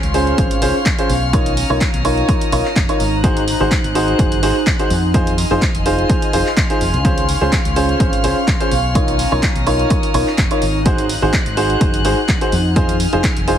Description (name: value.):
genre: piano house.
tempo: 126 BPM.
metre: 4/4.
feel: swing 54% on 16ths.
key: Db major.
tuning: A4 = 440 Hz.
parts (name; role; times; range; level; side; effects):
warm studio violin section; sustained chords; 0.0-13.6 s; C5 to Gb6; -26 LUFS; left 2 dB; sidechain pumping.
fingered electric bass; bass; 0.0-13.6 s; F1 to F2; -20 LUFS; equal; sidechain pumping.
punchy analog drum machine; drums; 0.0-13.6 s; handclaps, hi-hat; -24 LUFS; right 1 dB; none.
ethereal airy pad; texture; 0.0-13.6 s; Db4 to C6; -24 LUFS; equal; ensemble chorus, built-in reverb, sidechain pumping.
clear upright piano; riff; 0.1-13.6 s; Db4 to Db5; -18 LUFS; right 1 dB; sidechain pumping, dub echo.
electronic kick drum; drums; 0.4-13.3 s; none; -18 LUFS; equal; overdrive.
room: little or no reverb.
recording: heavily compressed radio sound.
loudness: -13 LUFS.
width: side -10 dB against mid.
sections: 0.0-13.6 A section.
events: none.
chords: 0.0 Dbmaj7; 1.3 Cbmaj9#11; 3.2 Ab7; 5.1 Fm7; 7.0 Dbmaj7; 9.0 Cbmaj9#11; 10.9 Ab7; 12.8 Fm7.